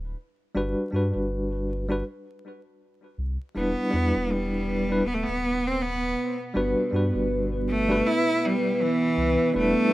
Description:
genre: trip hop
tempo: 80 BPM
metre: 4/4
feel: swing 60% on 16ths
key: unclear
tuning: A4 = 441 Hz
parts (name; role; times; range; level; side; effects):
- warm sub bass; bass; 0.0-9.7 s; D1 to G2; -30 LUFS; equal; tube saturation
- bell-like tine electric piano; accompaniment; 0.5-9.9 s; G3 to B4; -27 LUFS; equal; tremolo, vintage 12-bit sampler grit, tape echo
- dark analog pad; sustained chords; 4.2-9.9 s; B3 to B4; -27 LUFS; right 1 dB; chorus
- clear cello; melody; 3.6-9.9 s; E3 to E4; -26 LUFS; equal; tape echo
room: moderate studio ambience, RT60 0.5 s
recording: rough home demo mix, vinyl crackle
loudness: -23 LUFS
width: side -16 dB against mid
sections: 0.0-9.9 A section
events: none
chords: 0.0 N.C.; 0.5 Gmaj7; 2.0 N.C.; 3.5 Em7; 5.0 Bm/D; 6.5 Gmaj7; 8.0 Cmaj7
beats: | 0.55 1.29 2.04 2.79 | 3.54 4.29 5.04 5.79 | 6.54 7.29 8.04 8.79 | 9.54

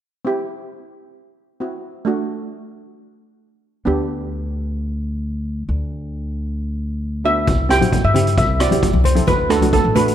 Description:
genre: calypso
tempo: 133 BPM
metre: 4/4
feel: straight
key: unclear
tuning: A4 = 439 Hz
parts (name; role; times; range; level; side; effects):
- steel pan; accompaniment; 0.2-10.1 s; A3 to A4; -22 LUFS; right 2 dB; none
- upright bass; bass; 3.9-10.1 s; A1 to G2; -20 LUFS; equal; none
- steel pan; melody; 7.3-10.1 s; A4 to G5; -18 LUFS; right 1 dB; none
- street-band drum kit; drums; 7.5-10.1 s; hi-hat, kick drum, rim click; -21 LUFS; equal; none
- congas; percussion; 7.5-10.1 s; none; -24 LUFS; left 4 dB; none
room: light reverb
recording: dark, warm production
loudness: -17 LUFS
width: side -10 dB against mid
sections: 0.3-7.5 A section; 7.5-10.1 B section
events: none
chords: 0.3 C; 2.1 D; 3.9 G/D; 7.5 C6; 9.3 D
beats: | 0.26 0.71 1.16 1.61 | 2.06 2.51 2.96 3.41 | 3.87 4.32 4.77 5.22 | 5.67 6.12 6.57 7.03 | 7.48 7.93 8.38 8.83 | 9.28 9.73

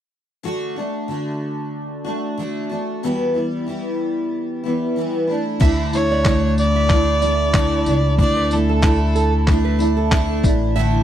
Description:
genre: acoustic pop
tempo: 93 BPM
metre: 4/4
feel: swing 55% on 16ths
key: D major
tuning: A4 = 438 Hz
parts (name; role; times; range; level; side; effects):
- picked steel-string acoustic guitar; accompaniment; 0.4-11.0 s; E2 to F#4; -21 LUFS; equal; double-tracked left and right
- nylon-string guitar; arpeggios; 5.6-11.0 s; A4 to E5; -28 LUFS; right 10 dB; none
- upright bass; bass; 5.6-11.0 s; A1 to D2; -19 LUFS; equal; none
- dusty soul sampler-style drum kit; drums; 5.6-10.6 s; crash cymbal, handclaps, kick drum, tambourine; -18 LUFS; equal; none
- warm violin; melody; 5.9-9.8 s; A4 to D5; -21 LUFS; equal; none
room: small room ambience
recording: dry, close 1970s-style studio recording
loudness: -17 LUFS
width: side -10 dB against mid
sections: 0.4-5.6 A section; 5.6-11.0 B section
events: none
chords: 0.4 D; 3.0 Em; 5.3 Dsus2; 10.4 Asus4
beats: | 0.44 1.09 1.73 2.38 | 3.03 3.67 4.32 4.97 | 5.61 6.26 6.90 7.54 | 8.19 8.83 9.47 10.12 | 10.76

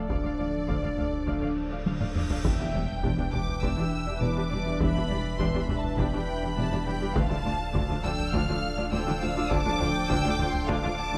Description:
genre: cinematic, hybrid orchestral and electronic film score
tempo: 102 BPM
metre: 4/4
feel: straight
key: unclear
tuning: A4 = 440 Hz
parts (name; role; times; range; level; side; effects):
- rich symphonic violin section; melody; 0.0-11.2 s; A4 to F6; -38 LUFS; equal; none
- warm symphonic violin section; second line; 0.0-11.2 s; B4 to A5; -39 LUFS; equal; none
- hollow soft pad; sustained chords; 0.0-11.2 s; E3 to E5; -37 LUFS; equal; chorus
- mellow French horn section; sustained chords; 0.0-11.2 s; E3 to D4; -40 LUFS; equal; none
- resonant blip pluck; arpeggios; 0.0-11.2 s; D3 to D4; -40 LUFS; equal; none
- sub bass with octave; bass; 0.0-11.2 s; D1 to E1; -38 LUFS; equal; none
- warm symphonic viola section; accompaniment; 0.1-11.2 s; D4 to F5; -39 LUFS; equal; none
- rich symphonic cello section; bass; 0.1-11.2 s; D2 to E2; -37 LUFS; equal; none
- warm symphonic double bass section; bass; 0.1-10.7 s; E1 to D2; -37 LUFS; equal; none
- solo taiko drums; drums; 0.1-11.2 s; none; -35 LUFS; equal; none
- cymbal swell and impact; sound effects; 1.6-4.8 s; none; -41 LUFS; equal; none
room: moderate scoring stage reverb, RT60 2.1 s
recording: none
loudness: -28 LUFS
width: mono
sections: 0.0-2.5 A section; 2.5-11.2 A section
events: cymbal swell 1.6-2.5; drum fill 1.9-2.5; impact 2.5-4.8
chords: 0.0 Dm; 2.5 Em7; 7.2 Dm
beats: | 0.10 0.69 1.28 1.86 | 2.45 3.04 3.63 4.22 | 4.80 5.39 5.98 6.57 | 7.16 7.75 8.34 8.92 | 9.51 10.10 10.69

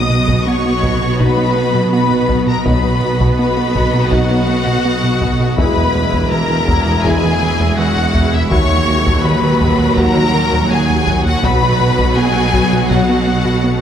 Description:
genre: cinematic, hybrid orchestral and electronic film score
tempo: 82 BPM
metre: 4/4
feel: straight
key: unclear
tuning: A4 = 440 Hz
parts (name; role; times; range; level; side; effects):
- warm symphonic violin section; melody; 0.0-13.8 s; E5 to D#6; -20 LUFS; left 5 dB; none
- clear symphonic violin section; second line; 0.0-13.8 s; E4 to D#5; -21 LUFS; left 1 dB; none
- rich symphonic viola section; accompaniment; 0.0-13.8 s; F#3 to F#4; -22 LUFS; equal; none
- ethereal airy pad; sustained chords; 0.0-13.8 s; A#2 to F#5; -21 LUFS; equal; ensemble chorus, built-in reverb, phaser
- rubbery square bass; riff; 0.0-13.7 s; D#2 to B3; -19 LUFS; right 1 dB; none
- mellow tuba; bass; 0.0-13.8 s; E1 to D#2; -22 LUFS; right 2 dB; none
- rich symphonic cello section; bass; 0.0-13.8 s; D#2 to B2; -22 LUFS; right 2 dB; none
- warm symphonic double bass section; bass; 0.0-13.8 s; E1 to D#2; -22 LUFS; right 2 dB; none
- taiko ensemble; drums; 0.3-13.6 s; none; -21 LUFS; equal; none
- mellow French horn section; sustained chords; 1.2-13.2 s; F#3 to F#4; -25 LUFS; left 2 dB; none
room: moderate concert hall reverb, RT60 2.4 s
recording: none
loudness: -12 LUFS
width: side -9 dB against mid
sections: 0.0-13.8 A section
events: none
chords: 0.0 B; 5.6 E; 8.5 D#m; 11.4 B5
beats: 0.46 1.20 1.93 | 2.66 3.39 4.12 4.85 | 5.58 6.32 7.05 7.78 | 8.51 9.24 9.97 10.71 | 11.44 12.17 12.90 13.63

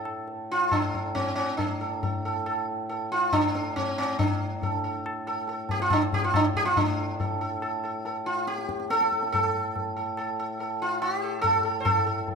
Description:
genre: indian classical, Hindustani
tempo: 140 BPM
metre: 3/4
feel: straight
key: A raga malkauns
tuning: A4 = 442 Hz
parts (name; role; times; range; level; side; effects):
- sitar; melody; 0.0-12.3 s; C4 to C5; -26 LUFS; right 2 dB; none
- pedal harmonium; drone; 0.0-12.3 s; A2 to A3; -35 LUFS; left 1 dB; none
- tabla; percussion; 0.1-12.3 s; none; -31 LUFS; left 3 dB; none
room: moderate recital hall reverb, RT60 1.7 s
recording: minimal, uncompressed stereo recording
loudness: -24 LUFS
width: side -5 dB against mid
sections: 0.0-6.8 A section; 6.8-12.3 B section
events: speeding up 0.0-12.3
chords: none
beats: | 0.29 0.72 1.16 | 1.59 2.03 2.46 | 2.90 3.33 3.77 | 4.20 4.63 5.06 | 5.49 5.92 6.35 | 6.78 7.20 7.63 | 8.06 8.48 8.91 | 9.33 9.76 10.18 | 10.60 11.02 11.45 | 11.87 12.29

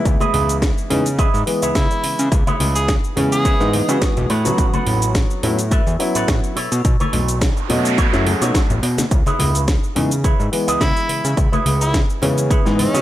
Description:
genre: nu-disco, nu disco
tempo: 106 BPM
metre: 4/4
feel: swing 54% on 16ths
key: C# minor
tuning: A4 = 438 Hz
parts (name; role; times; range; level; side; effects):
- dark concert grand piano; accompaniment; 0.0-13.0 s; E3 to D#5; -22 LUFS; left 1 dB; sidechain pumping, tape echo
- electric guitar with an envelope filter; riff; 0.1-13.0 s; E4 to E5; -24 LUFS; right 3 dB; lush chorus
- fat analog bass; bass; 0.1-13.0 s; A1 to C#3; -20 LUFS; equal; sidechain pumping
- electronic kick drum; drums; 0.1-12.6 s; none; -18 LUFS; equal; none
- house drum kit; drums; 0.1-13.0 s; cabasa, hi-hat, snare drum; -25 LUFS; equal; none
- congas; percussion; 0.2-12.9 s; none; -26 LUFS; left 3 dB; none
- bright tenor saxophone; melody; 1.8-3.7, 10.8-13.0 s; C#4 to G#4; -24 LUFS; equal; tape echo
- noise sweep; sound effects; 7.2-9.1 s; none; -26 LUFS; right 6 dB; none
room: digital ambience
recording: none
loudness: -15 LUFS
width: side -13 dB against mid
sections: 0.0-13.0 A section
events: noise sweep 7.2-9.1; drum fill 8.5-9.1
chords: 0.1 C#m7; 4.3 A69; 6.6 B9sus4; 9.1 C#m7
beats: | 0.06 0.62 1.19 1.75 | 2.32 2.88 3.45 4.02 | 4.58 5.15 5.71 6.28 | 6.85 7.41 7.98 8.54 | 9.11 9.68 10.24 10.81 | 11.38 11.94 12.51

